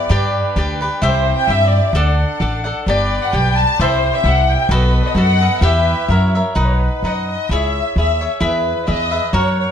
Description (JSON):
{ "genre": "mexican folk, mariachi", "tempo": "130 BPM", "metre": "2/4", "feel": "rubato", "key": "B major from 6.6 s", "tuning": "A4 = 444 Hz", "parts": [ { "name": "rich studio violin section", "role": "melody", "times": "0.0-9.7 s", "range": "B4 to A5", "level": "-19 LUFS", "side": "left 2 dB", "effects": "none" }, { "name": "cavaquinho", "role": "accompaniment", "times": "0.0-9.7 s", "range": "D4 to F#5", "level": "-20 LUFS", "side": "left 1 dB", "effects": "none" }, { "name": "rich chamber violin section", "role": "sustained chords", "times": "0.0-6.6 s", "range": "G3 to F#5", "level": "-26 LUFS", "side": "right 1 dB", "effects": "none" }, { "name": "upright bass", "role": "bass", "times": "0.1-9.6 s", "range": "G1 to G2", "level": "-17 LUFS", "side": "equal", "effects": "none" } ], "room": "moderate studio reverb, RT60 0.6 s", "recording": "dark, warm production", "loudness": "-14 LUFS", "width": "side -8 dB against mid", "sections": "0.0-6.6 A section; 6.6-9.7 B section", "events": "none", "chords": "0.1 G; 1.0 C; 1.9 D; 2.9 G; 3.8 C; 4.7 B7; 5.6 Em; 6.1 F#7; 6.6 B; 7.5 C#m; 8.4 E" }